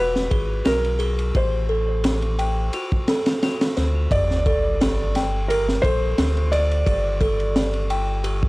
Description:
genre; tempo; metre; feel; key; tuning
trip hop; 87 BPM; 4/4; swing 53% on 16ths; unclear; A4 = 440 Hz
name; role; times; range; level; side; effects
felt-muted upright piano; melody; 0.0-7.9 s; Bb4 to D5; -25 LUFS; equal; tape echo
music box; arpeggios; 0.0-8.5 s; F#4 to G5; -27 LUFS; equal; vintage 12-bit sampler grit, tape echo
warm sub bass; bass; 0.0-8.5 s; E1 to D2; -23 LUFS; equal; tube saturation
crunchy breakbeat drum kit; drums; 0.2-8.5 s; kick drum, ride cymbal, snare drum; -24 LUFS; equal; none
sub drop; sound effects; 4.1-6.9 s; none; -29 LUFS; equal; none
room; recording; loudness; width
studio ambience; dry, gritty hardware recording, transformer saturation, vinyl crackle; -19 LUFS; side -21 dB against mid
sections
0.0-4.1 A section; 4.1-8.5 B section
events
impact 4.1-6.9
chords
0.0 E; 1.3 Am7; 2.7 D7; 4.1 G5

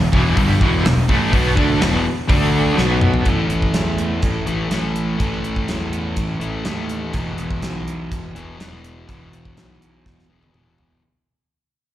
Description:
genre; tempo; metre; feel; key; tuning
hard rock; 124 BPM; 4/4; straight; E minor; A4 = 440 Hz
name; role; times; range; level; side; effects
cranked stack guitar; riff; 0.0-3.3 s; E2 to D4; -22 LUFS; right 1 dB; overdrive, tremolo, slapback echo
crunchy overdriven guitar; riff; 0.0-11.0 s; E2 to D4; -27 LUFS; right 8 dB; phaser, slapback echo
sludgy distorted guitar; riff; 0.0-11.0 s; E2 to D4; -22 LUFS; left 4 dB; overdrive
fuzz fingered electric bass; bass; 0.0-11.0 s; E1 to E2; -23 LUFS; equal; overdrive
gated 80s drum kit; drums; 0.1-11.0 s; hi-hat, kick drum, snare drum, toms; -20 LUFS; equal; none
room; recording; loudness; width
small room ambience; live gig heard through the venue's PA, recital hall reverb; -16 LUFS; side -13 dB against mid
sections
0.0-3.3 A section; 3.3-11.0 B section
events
drum fill 2.8-3.3, 10.1-11.0; fade-out 3.3-11.0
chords
0.0 Em; 2.3 D5; 2.8 B5; 3.3 A5; 7.1 E5

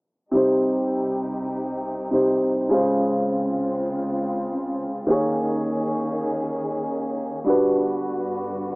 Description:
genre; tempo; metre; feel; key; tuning
dancehall; free time; none; none; C phrygian; A4 = 440 Hz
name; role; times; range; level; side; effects
clear baby grand piano; accompaniment; 0.3-8.8 s; C3 to Db5; -22 LUFS; equal; none
clear studio string section; sustained chords; 0.3-8.8 s; C2 to Ab4; -28 LUFS; equal; none
room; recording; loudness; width
light reverb, small room ambience; dry, gritty hardware recording, transformer saturation, low-pass filter, small speaker sound; -21 LUFS; side -27 dB against mid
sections
0.3-8.8 A section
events
none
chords
0.3 Cm; 2.7 Dbmaj7; 5.1 Eb7sus4; 7.5 Gmaj7

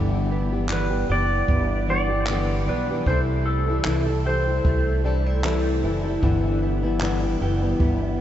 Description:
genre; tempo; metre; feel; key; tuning
acoustic pop; 76 BPM; 4/4; swing 55% on 16ths; G major; A4 = 437 Hz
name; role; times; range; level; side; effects
fingerpicked plugged-in steel-string acoustic guitar; accompaniment; 0.0-8.2 s; G2 to A4; -25 LUFS; left 3 dB; lush chorus
direct-recorded clean electric guitar; arpeggios; 0.0-8.2 s; E3 to G4; -32 LUFS; right 5 dB; ensemble chorus
upright bass; bass; 0.0-8.2 s; F#1 to C2; -24 LUFS; equal; none
clean lap steel guitar; melody; 0.7-5.8 s; A4 to D5; -27 LUFS; right 2 dB; analog delay
jazz brush drum kit; drums; 0.7-8.0 s; handclaps, kick drum; -27 LUFS; equal; none
room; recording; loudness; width
moderate huge ambient reverb, RT60 6.4 s; dreamy mix soaked in reverb, nothing above 7.9 kHz; -20 LUFS; side -11 dB against mid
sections
0.0-8.2 A section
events
none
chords
0.0 G6; 3.1 C6; 6.2 G6

